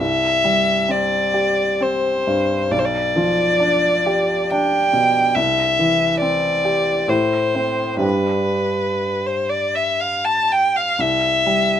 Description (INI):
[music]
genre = classical, romantic duo for violin and grand piano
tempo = 59-73 BPM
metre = 3/4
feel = rubato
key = C major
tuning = A4 = 440 Hz
[part]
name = rich violin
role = melody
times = 0.0-11.8 s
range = B4 to A5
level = -17 LUFS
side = left 1 dB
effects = none
[part]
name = clear baby grand piano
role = accompaniment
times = 0.0-11.8 s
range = B1 to C5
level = -21 LUFS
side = right 1 dB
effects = none
[sound]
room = moderate studio reverb, RT60 0.6 s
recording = none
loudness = -16 LUFS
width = side -9 dB against mid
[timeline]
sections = 0.0-11.8 A section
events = none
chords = 0.0 C; 2.7 G7/B; 5.4 C; 7.1 Am; 8.0 G; 11.0 C